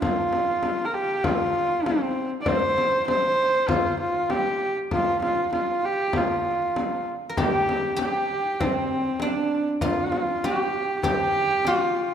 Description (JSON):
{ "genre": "mongolian traditional, Mongolian folk", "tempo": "98 BPM", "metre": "4/4", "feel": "straight", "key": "F zhi mode", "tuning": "A4 = 439 Hz", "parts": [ { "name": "rich horsehead fiddle", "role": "melody", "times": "0.0-12.1 s", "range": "C4 to D5", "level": "-23 LUFS", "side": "right 1 dB", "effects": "none" }, { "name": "frame drum", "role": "percussion", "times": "0.0-11.8 s", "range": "none", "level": "-28 LUFS", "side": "left 2 dB", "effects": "none" }, { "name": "guzheng", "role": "second line", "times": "7.3-12.1 s", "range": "C4 to Bb4", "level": "-29 LUFS", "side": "left 1 dB", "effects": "none" } ], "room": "moderate scoring stage reverb, RT60 1.9 s", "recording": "minimal, uncompressed stereo recording", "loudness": "-22 LUFS", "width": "side -8 dB against mid", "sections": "0.0-12.1 A section", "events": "none", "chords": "none" }